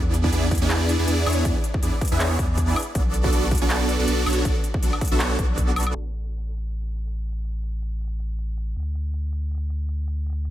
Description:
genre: future bass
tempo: 160 BPM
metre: 4/4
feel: swing 55% on 16ths, half-time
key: unclear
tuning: A4 = 439 Hz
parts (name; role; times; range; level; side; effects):
- supersaw chords; riff; 0.0-5.9 s; B3 to E5; -24 LUFS; right 1 dB; phaser, sidechain pumping, low-pass filter, dub echo
- saturated sub bass; bass; 0.0-10.5 s; A1 to E2; -24 LUFS; equal; tube saturation, sidechain pumping
- big-room dance drum kit; drums; 0.1-10.5 s; handclaps, hi-hat, woodblock; -30 LUFS; left 1 dB; overdrive
- electronic kick drum; drums; 0.2-5.7 s; none; -24 LUFS; equal; overdrive
room: light reverb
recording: low-pass filter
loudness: -21 LUFS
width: side -13 dB against mid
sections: 0.0-6.0 A section; 6.0-10.5 B section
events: drop 0.0-6.0; filter sweep 6.0-10.5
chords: 0.0 E7; 2.8 Bm7; 6.0 N.C.

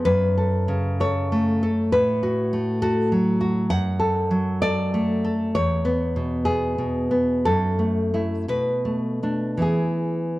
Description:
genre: romantic piece for solo classical guitar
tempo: 51-69 BPM (dotted quarters)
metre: 6/8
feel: rubato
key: F# minor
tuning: A4 = 444 Hz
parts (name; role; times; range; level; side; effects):
- nylon-string guitar; solo; 0.0-10.4 s; E2 to F#5; -20 LUFS; equal; none
room: moderate recital hall reverb, RT60 1.4 s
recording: dark, warm production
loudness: -20 LUFS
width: side -18 dB against mid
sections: 0.0-10.4 A section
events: none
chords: 0.1 F#m; 1.9 F#m/A; 3.7 D/F#; 5.5 E; 7.5 F#m7; 8.5 Bm7; 9.6 E

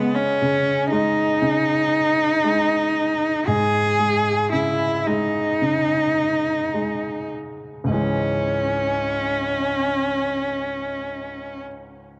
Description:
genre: pop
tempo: 52-60 BPM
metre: 4/4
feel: straight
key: C# minor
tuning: A4 = 443 Hz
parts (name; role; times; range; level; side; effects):
- rich cello; melody; 0.0-11.6 s; B3 to G#4; -23 LUFS; equal; cassette tape
- clear baby grand piano; accompaniment; 0.0-12.2 s; C#2 to G#3; -28 LUFS; equal; cassette tape
room: wet spring reverb, RT60 2.2 s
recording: home recording on cassette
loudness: -21 LUFS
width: mono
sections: 0.0-7.9 A section; 7.9-12.2 B section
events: slowing down 0.0-7.9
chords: 0.0 C#sus2; 7.9 C#m

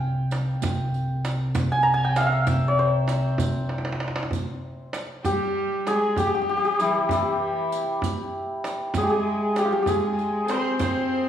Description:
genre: Persian modal ensemble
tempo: 65 BPM (dotted quarters)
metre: 6/8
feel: straight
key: C dastgah homayun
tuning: A4 = 441 Hz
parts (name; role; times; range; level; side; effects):
- santur; melody; 0.0-11.3 s; E4 to Bb5; -24 LUFS; left 1 dB; none
- muted double bass; drone; 0.0-4.4 s; C2; -25 LUFS; equal; none
- riq; percussion; 0.3-10.9 s; none; -36 LUFS; right 4 dB; none
- tombak; percussion; 0.3-10.9 s; none; -30 LUFS; right 2 dB; none
- rich cello; second line; 5.2-11.3 s; E3 to C4; -29 LUFS; right 1 dB; none
- rich kamancheh; second line; 5.2-11.3 s; E4 to C5; -32 LUFS; left 2 dB; none
room: wet recital hall reverb, RT60 1.3 s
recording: studio reverb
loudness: -22 LUFS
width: side -10 dB against mid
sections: 0.0-4.3 A section; 4.3-11.3 B section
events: drum fill 3.7-4.3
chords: none

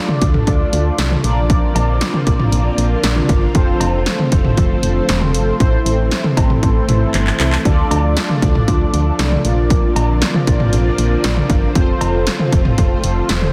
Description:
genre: synth-pop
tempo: 117 BPM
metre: 4/4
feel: straight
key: D minor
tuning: A4 = 440 Hz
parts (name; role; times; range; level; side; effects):
- mellow synth brass; accompaniment; 0.0-13.5 s; C4 to D5; -23 LUFS; equal; chorus, phaser
- string machine, full ensemble; sustained chords; 0.0-13.5 s; D3 to F4; -26 LUFS; equal; ensemble chorus
- punchy analog drum machine; drums; 0.1-13.5 s; cowbell, handclaps, hi-hat, kick drum, snare drum, toms; -18 LUFS; equal; none
- solid FM bass; bass; 0.2-13.5 s; E1 to D2; -20 LUFS; equal; none
room: light reverb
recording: dense, heavily limited modern master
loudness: -15 LUFS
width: mono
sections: 0.0-13.5 A section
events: drum fill 7.1-7.7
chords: 0.0 Dm; 1.2 Bbadd9; 3.5 F6; 5.6 Am; 7.7 Dm; 9.4 Bbadd9; 11.8 F6

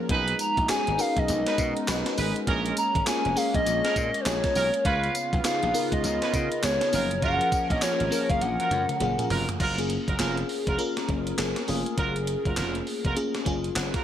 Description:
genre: R&B, new jack swing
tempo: 101 BPM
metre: 4/4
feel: swing 62% on 16ths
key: F# major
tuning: A4 = 440 Hz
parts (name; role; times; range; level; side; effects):
- FM electric piano with soft pad layer; accompaniment; 0.0-14.0 s; E#3 to F#5; -30 LUFS; left 2 dB; chorus, phaser
- chorused pulse-width pad; sustained chords; 0.0-9.6 s; C#3 to A#4; -33 LUFS; equal; tremolo
- clear horn section; stabs; 0.1-14.0 s; C#4 to B4; -32 LUFS; right 4 dB; none
- slap bass; bass; 0.1-13.9 s; E#1 to C#3; -30 LUFS; equal; none
- gated 80s digital drum machine; drums; 0.1-14.0 s; crash cymbal, handclaps, hi-hat, kick drum, snare drum, tambourine, toms; -30 LUFS; equal; gated reverb, gated reverb snare
- hollow clarinet-like synth lead; melody; 0.4-9.3 s; B#4 to A#5; -27 LUFS; equal; chorus
room: light reverb, digital ambience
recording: none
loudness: -23 LUFS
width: side -10 dB against mid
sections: 0.0-9.6 A section; 9.6-14.0 B section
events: drum fill 8.4-9.6; FM electric piano fill 13.5-14.0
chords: 0.1 B6; 2.5 A#m7; 4.8 C#7; 6.9 F#maj7

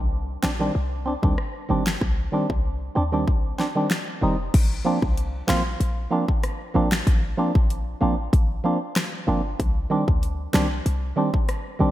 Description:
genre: dancehall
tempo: 95 BPM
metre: 4/4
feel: straight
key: Bb major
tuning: A4 = 439 Hz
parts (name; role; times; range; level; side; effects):
- short 808-style bass; bass; 0.0-11.9 s; F1 to Eb2; -25 LUFS; equal; none
- percussive organ stab; accompaniment; 0.4-11.9 s; Eb3 to F4; -25 LUFS; right 1 dB; chorus
- pop drum kit; drums; 0.4-11.6 s; crash cymbal, finger snaps, hi-hat, kick drum, rim click, snare drum; -23 LUFS; equal; gated reverb
room: light reverb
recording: bright 1980s-style digital production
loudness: -21 LUFS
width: side -14 dB against mid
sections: 0.0-4.5 A section; 4.5-11.9 B section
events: none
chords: 0.0 Cmadd9; 4.5 Bbadd9; 9.6 Cmadd9

